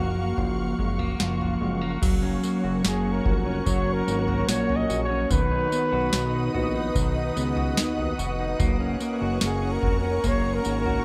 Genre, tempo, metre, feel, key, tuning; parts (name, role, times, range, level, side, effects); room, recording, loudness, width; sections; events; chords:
dream pop; 73 BPM; 4/4; straight; F# major; A4 = 442 Hz
breathy flugelhorn; melody; 0.0-11.0 s; F#4 to D#5; -31 LUFS; equal; tape echo
ethereal airy pad; sustained chords; 0.0-11.0 s; A#3 to D#6; -35 LUFS; equal; ensemble chorus, built-in reverb
clean electric guitar; arpeggios; 0.0-11.0 s; D#3 to F#4; -30 LUFS; equal; lush chorus, tape echo
fat analog bass; bass; 0.0-11.0 s; E#1 to D#2; -31 LUFS; equal
booming analog drum machine; drums; 0.4-11.0 s; crash cymbal, kick drum, snare drum, tambourine, toms; -30 LUFS; equal
light reverb, digital ambience; -25 LUFS; mono
0.0-2.0 A section; 2.0-11.0 B section
0.0 F#maj7; 2.0 F#; 5.3 B; 8.6 F#